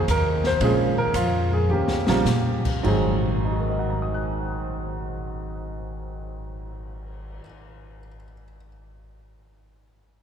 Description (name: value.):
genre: jazz piano trio.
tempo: 101-116 BPM.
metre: 4/4.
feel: swing 68% on 8ths.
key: Ab mixolydian.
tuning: A4 = 443 Hz.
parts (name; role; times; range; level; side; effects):
warm concert grand piano; melody; 0.0-8.7 s; Ab2 to Gb6; -24 LUFS; right 2 dB; none.
upright bass; bass; 0.0-7.4 s; Ab1 to Bb2; -26 LUFS; left 1 dB; none.
open jazz drum kit; drums; 0.1-7.5 s; crash cymbal, cymbal swell, hi-hat, kick drum, ride cymbal, snare drum; -32 LUFS; left 2 dB; none.
room: wet cathedral reverb, RT60 6.3 s.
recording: recorded in a church or concert hall.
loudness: -21 LUFS.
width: side -8 dB against mid.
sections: 0.0-2.8 A section; 2.8-7.6 B section.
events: slowing down 0.0-2.8; drum fill 1.7-2.3.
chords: 0.0 Ab7 (rootless); 0.6 Bbm7; 1.7 Eb7; 2.8 Ab7.